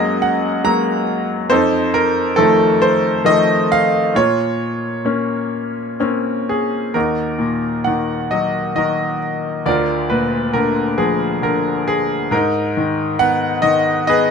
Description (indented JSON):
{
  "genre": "classical, lyrical solo piano",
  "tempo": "68 BPM",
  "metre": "3/4",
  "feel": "rubato",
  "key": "Bb minor, Eb harmonic minor from 7.0 s",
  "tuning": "A4 = 440 Hz",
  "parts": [
    { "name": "bright grand piano", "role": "solo", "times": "0.0-14.3 s", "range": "D2 to Bb5", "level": "-15 LUFS", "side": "equal", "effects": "none" }
  ],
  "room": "light reverb",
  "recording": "close, detailed microphones",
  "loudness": "-15 LUFS",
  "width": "side -6 dB against mid",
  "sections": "0.0-7.0 A section; 7.0-14.3 B section",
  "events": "none",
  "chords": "0.0 Gbadd9; 1.5 F7; 4.1 Bbmadd9; 7.0 Ebm; 9.7 Bb/D; 12.3 Abm"
}